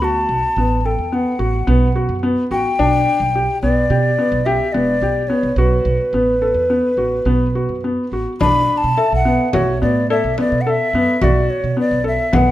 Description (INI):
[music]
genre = contemporary instrumental, chamber music in an uneven meter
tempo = 108 BPM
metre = 5/4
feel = straight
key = B minor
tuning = A4 = 443 Hz
[part]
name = mellow hollow jazz flute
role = melody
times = 0.0-12.5 s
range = B4 to B5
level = -19 LUFS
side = left 1 dB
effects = none
[part]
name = felt-muted upright piano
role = arpeggios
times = 0.0-12.5 s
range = B3 to A4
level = -19 LUFS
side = left 1 dB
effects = none
[part]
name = upright bass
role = bass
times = 0.0-12.5 s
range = E1 to B2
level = -20 LUFS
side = right 2 dB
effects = none
[part]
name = frame drum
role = percussion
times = 8.4-12.5 s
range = none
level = -22 LUFS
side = left 3 dB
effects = none
[part]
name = worn celesta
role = texture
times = 9.0-12.5 s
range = D5 to F#5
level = -25 LUFS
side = left 6 dB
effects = none
[sound]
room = moderate recital hall reverb, RT60 1.6 s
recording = none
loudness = -14 LUFS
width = side -14 dB against mid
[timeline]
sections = 0.0-8.4 A section; 8.4-12.5 B section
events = none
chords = 0.0 B7(no3); 2.8 G/B; 5.6 B5; 8.4 Bm7